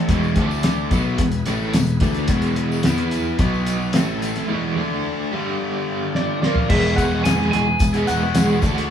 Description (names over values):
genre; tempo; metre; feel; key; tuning
classic rock; 109 BPM; 4/4; straight; E mixolydian; A4 = 439 Hz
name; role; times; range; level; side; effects
bright tonewheel organ; sustained chords; 0.0-8.9 s; G3 to F#5; -35 LUFS; left 2 dB; none
cranked stack guitar; riff; 0.0-8.9 s; E2 to F#4; -26 LUFS; left 6 dB; overdrive
overdriven electric guitar; riff; 0.0-8.9 s; E2 to G#4; -23 LUFS; right 4 dB; tremolo
picked electric bass; bass; 0.0-8.9 s; E1 to E2; -23 LUFS; left 1 dB; none
cloth-damped thuddy drum kit; drums; 0.1-8.9 s; crash cymbal, hi-hat, kick drum, snare drum, toms; -21 LUFS; left 1 dB; none
tambourine; percussion; 0.1-8.8 s; none; -38 LUFS; left 6 dB; none
lightly driven lead guitar; melody; 6.2-8.6 s; D5 to G#5; -24 LUFS; equal; none
octave-fuzz lead guitar; second line; 6.2-8.6 s; D4 to G#4; -31 LUFS; right 4 dB; distortion
room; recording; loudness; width
wet large studio reverb, RT60 1.3 s; band playing live in one room, small room ambience; -17 LUFS; side -9 dB against mid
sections
0.0-6.7 A section; 6.7-8.9 B section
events
break 4.5-6.7; drum fill 6.2-6.7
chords
0.1 E5; 0.4 D5; 0.9 E; 3.4 B5; 4.0 A5; 4.5 E5; 4.8 D5; 5.3 G5; 6.4 A#; 6.7 E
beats
| 0.10 0.65 1.20 1.75 | 2.30 2.85 3.40 3.95 | 4.50 5.05 5.60 6.15 | 6.70 7.25 7.80 8.35